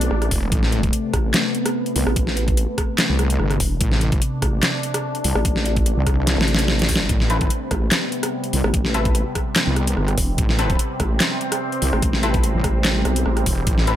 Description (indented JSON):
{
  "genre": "heavy wobble dubstep",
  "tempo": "146 BPM",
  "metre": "4/4",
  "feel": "swing 53% on 16ths, half-time",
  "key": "A minor",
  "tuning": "A4 = 442 Hz",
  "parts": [
    { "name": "evolving wavetable pad", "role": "sustained chords", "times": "0.0-14.0 s", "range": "C3 to D4", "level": "-26 LUFS", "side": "equal", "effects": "phaser, built-in reverb, sidechain pumping" },
    { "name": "vowel-sweep wobble bass", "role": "bass", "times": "0.0-13.4 s", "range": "E1 to B1", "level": "-21 LUFS", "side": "equal", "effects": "chorus, overdrive" },
    { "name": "dubstep drum kit", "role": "drums", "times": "0.0-14.0 s", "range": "handclaps, hi-hat, rim click, snare drum", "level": "-22 LUFS", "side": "equal", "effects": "overdrive" },
    { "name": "wobble bass", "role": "bass", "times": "0.3-14.0 s", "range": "E1 to C2", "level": "-20 LUFS", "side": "equal", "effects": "chorus, overdrive" },
    { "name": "electronic kick drum", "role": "drums", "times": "0.3-13.8 s", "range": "none", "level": "-22 LUFS", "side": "equal", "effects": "none" },
    { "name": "orchestra-hit-like synth stab", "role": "stabs", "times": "7.3-14.0 s", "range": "C4 to B4", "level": "-27 LUFS", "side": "left 3 dB", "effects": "built-in reverb, digital delay" }
  ],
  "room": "digital ambience",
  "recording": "none",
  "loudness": "-17 LUFS",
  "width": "side -12 dB against mid",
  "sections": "0.0-14.0 A section",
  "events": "drum fill 6.3-7.1",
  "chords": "0.0 Amadd9",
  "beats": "0.11 | 0.52 0.93 1.34 1.75 | 2.16 2.57 2.98 3.40 | 3.81 4.22 4.63 5.04 | 5.45 5.86 6.27 6.68 | 7.09 7.50 7.92 8.33 | 8.74 9.15 9.56 9.97 | 10.38 10.79 11.20 11.61 | 12.03 12.44 12.85 13.26 | 13.67"
}